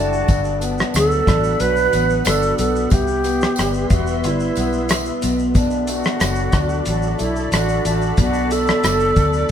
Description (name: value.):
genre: indie pop, bedroom pop.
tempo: 91 BPM.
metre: 4/4.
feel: straight.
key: unclear.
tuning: A4 = 440 Hz.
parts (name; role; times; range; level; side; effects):
alto flute; melody; 0.0-9.5 s; E4 to B4; -21 LUFS; right 3 dB; none.
electric guitar through a small old amp; accompaniment; 0.0-9.5 s; G2 to E4; -22 LUFS; left 2 dB; vibrato effect.
soft string machine; sustained chords; 0.0-9.5 s; B3 to D6; -28 LUFS; equal; ensemble chorus.
vintage muted fingered electric bass; bass; 0.0-9.4 s; E1 to D2; -23 LUFS; equal; none.
cloth-damped thuddy drum kit; drums; 0.1-9.5 s; hi-hat, kick drum, rim click, shaker; -20 LUFS; equal; none.
tambourine; percussion; 0.3-9.3 s; none; -33 LUFS; right 4 dB; none.
room: wet studio reverb, RT60 0.8 s.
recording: band playing live in one room.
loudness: -16 LUFS.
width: side -9 dB against mid.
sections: 0.3-9.5 A section.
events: none.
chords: 0.3 Gmaj7; 2.9 Cmaj7; 5.2 Bm7.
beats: | 0.29 0.94 1.60 2.26 | 2.92 3.58 4.23 4.89 | 5.55 6.21 6.87 7.52 | 8.18 8.84 9.50.